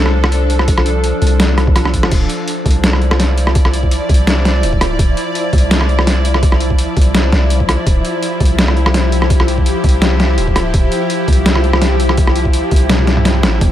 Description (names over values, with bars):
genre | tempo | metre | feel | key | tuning
half-time drum and bass | 167 BPM | 4/4 | swing 54% on 16ths, half-time | D minor | A4 = 439 Hz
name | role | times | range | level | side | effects
bowed-like drone | sustained chords | 0.0-13.7 s | F3 to D5 | -18 LUFS | left 1 dB | built-in reverb, sidechain pumping
long sustained 808-style bass | bass | 0.0-13.7 s | D1 to C2 | -14 LUFS | equal | none
boom bap sampler-style drum kit | drums | 0.1-13.7 s | crash cymbal, hi-hat, rim click, snare drum, toms | -16 LUFS | equal | overdrive
electronic kick drum | drums | 0.7-13.7 s | none | -13 LUFS | equal | overdrive
room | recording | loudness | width
light reverb | none | -11 LUFS | side -12 dB against mid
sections
0.0-2.1 A section; 2.1-13.7 A section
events
drop 0.0-2.1, 2.1-13.7; drum fill 1.6-2.1, 12.9-13.6; kick drops out 12.9-13.6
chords
0.0 Dm; 2.1 Dmadd9